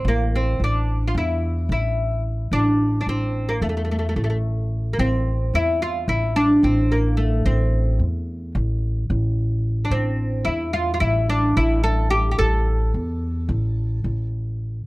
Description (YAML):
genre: Turkish makam ensemble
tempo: 219 BPM (eighths)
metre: 9/8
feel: straight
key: A makam kurdi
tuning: A4 = 441 Hz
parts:
  - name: oud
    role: melody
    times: 0.0-14.3 s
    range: A3 to A4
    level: -22 LUFS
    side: equal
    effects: none
  - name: upright bass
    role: bass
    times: 0.0-14.8 s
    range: A1 to E2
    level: -21 LUFS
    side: equal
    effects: none
room: little or no reverb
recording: dry, close 1970s-style studio recording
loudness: -19 LUFS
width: side -21 dB against mid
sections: 0.0-5.0 A section; 5.0-14.9 B section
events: none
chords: none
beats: | 0.04 0.32 0.59 0.87 1.14 1.42 1.69 1.97 2.24 | 2.52 2.79 3.06 3.34 3.61 3.89 4.16 4.44 4.71 | 4.99 5.26 5.53 5.81 6.08 6.36 6.63 6.90 7.18 | 7.45 7.72 8.00 8.27 8.54 8.82 9.09 9.37 9.64 | 9.91 10.19 10.46 10.74 11.01 11.29 11.56 11.84 12.11 | 12.38 12.66 12.94 13.21 13.48 13.76 14.04 14.31 14.59